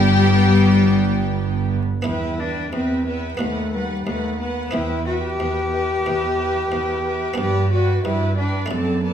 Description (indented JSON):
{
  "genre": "classical, baroque-style concerto movement with solo episodes",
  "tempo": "90 BPM",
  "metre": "4/4",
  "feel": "straight",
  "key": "E minor",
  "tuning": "A4 = 435 Hz",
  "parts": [
    { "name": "rich chamber violin section", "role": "melody", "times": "0.0-9.1 s", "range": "F#5 to A5", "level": "-33 LUFS", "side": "left 5 dB", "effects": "none" },
    { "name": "warm cello", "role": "melody", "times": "0.0-9.1 s", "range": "G3 to G4", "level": "-21 LUFS", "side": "left 3 dB", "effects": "none" },
    { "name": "rich chamber violin section", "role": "second line", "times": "0.0-9.1 s", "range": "G4 to F#5", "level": "-30 LUFS", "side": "left 1 dB", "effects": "none" },
    { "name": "buff-stop harpsichord", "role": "accompaniment", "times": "0.0-9.1 s", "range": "D#2 to F#4", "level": "-30 LUFS", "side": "right 2 dB", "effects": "none" },
    { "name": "rich studio viola section", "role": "accompaniment", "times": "0.0-9.1 s", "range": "B3 to B4", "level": "-29 LUFS", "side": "right 1 dB", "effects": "none" },
    { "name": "rich chamber cello section", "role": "bass", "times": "0.0-9.1 s", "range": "D#2 to G2", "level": "-23 LUFS", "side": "right 2 dB", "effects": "none" },
    { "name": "warm symphonic double bass section", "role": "bass", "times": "0.0-1.8 s", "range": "G1", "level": "-24 LUFS", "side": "right 6 dB", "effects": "none" }
  ],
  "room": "moderate recital hall reverb, RT60 1.4 s",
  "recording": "minimal, uncompressed stereo recording",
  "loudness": "-18 LUFS",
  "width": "side -9 dB against mid",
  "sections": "0.0-2.1 A section; 2.1-9.1 B section",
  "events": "none",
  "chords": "0.0 G; 2.1 Em; 3.4 B/D#; 4.7 Em; 7.4 G"
}